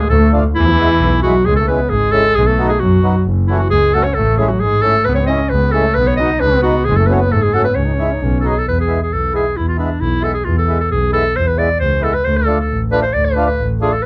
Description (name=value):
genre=klezmer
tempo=134 BPM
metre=2/4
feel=straight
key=C# minor, E phrygian dominant from 8.7 s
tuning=A4 = 441 Hz
part: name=bright clarinet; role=melody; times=0.0-14.1 s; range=D4 to D#5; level=-18 LUFS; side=equal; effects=none
part: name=growling trombone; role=second line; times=0.0-8.4 s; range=E3 to D#4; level=-23 LUFS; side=equal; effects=none
part: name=bright double bass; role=bass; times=0.1-13.9 s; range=F#1 to G#2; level=-18 LUFS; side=equal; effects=none
part: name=mellow accordion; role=accompaniment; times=0.3-13.9 s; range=F#3 to F#4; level=-23 LUFS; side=equal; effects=none
room=moderate small room reverb, RT60 0.5 s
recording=none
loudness=-15 LUFS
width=mono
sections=0.0-1.5 A section; 1.5-8.7 B section; 8.7-14.1 C section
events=none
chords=0.0 Dm; 0.6 E; 1.5 C#m; 2.4 B; 3.3 F#m; 4.2 A; 5.1 C#m; 6.0 B; 6.9 F#m; 7.8 C#m; 8.2 B; 8.7 E; 12.3 Dm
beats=0.10 | 0.55 1.00 | 1.46 1.91 | 2.36 2.81 | 3.27 3.72 | 4.17 4.62 | 5.07 5.52 | 5.97 6.42 | 6.87 7.32 | 7.77 8.22 | 8.66 9.12 | 9.56 10.01 | 10.46 10.91 | 11.36 11.81 | 12.26 12.70 | 13.15 13.60 | 14.04